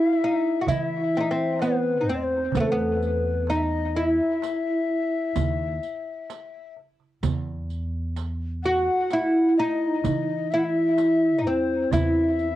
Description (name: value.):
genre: Arabic maqam ensemble.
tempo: 128 BPM (eighths).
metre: 10/8.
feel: straight.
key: unclear.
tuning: A4 = 440 Hz.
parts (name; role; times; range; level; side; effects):
oud; melody; 0.0-12.6 s; A3 to F#4; -22 LUFS; equal; cassette tape, analog delay.
mellow ney; second line; 0.0-12.6 s; B4 to F#5; -29 LUFS; left 7 dB; cassette tape.
darbuka; percussion; 0.2-12.5 s; none; -31 LUFS; right 7 dB; none.
upright bass; bass; 0.7-12.6 s; D#2 to E3; -29 LUFS; equal; none.
riq; percussion; 0.7-12.5 s; none; -38 LUFS; right 11 dB; none.
room: light reverb.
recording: home recording on cassette.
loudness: -22 LUFS.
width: side -14 dB against mid.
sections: 0.0-12.6 A section.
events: none.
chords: none.